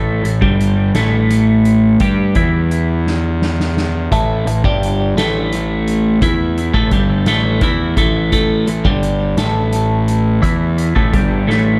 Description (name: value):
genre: psychedelic rock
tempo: 57 BPM (dotted quarters)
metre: 6/8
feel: straight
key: unclear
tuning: A4 = 440 Hz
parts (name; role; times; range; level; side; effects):
- twelve-string electric guitar; riff; 0.0-11.8 s; G2 to G4; -18 LUFS; equal; phaser, analog delay
- fuzz picked electric bass; bass; 0.0-11.8 s; G1 to G2; -20 LUFS; equal; overdrive
- soft-mallet drum kit; drums; 0.2-11.7 s; hi-hat, kick drum, snare drum; -22 LUFS; equal; analog delay
room: small room reverb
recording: echo-heavy mix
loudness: -15 LUFS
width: mono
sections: 0.0-11.8 A section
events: drum fill 3.1-4.1, 11.5-11.8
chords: 0.0 A5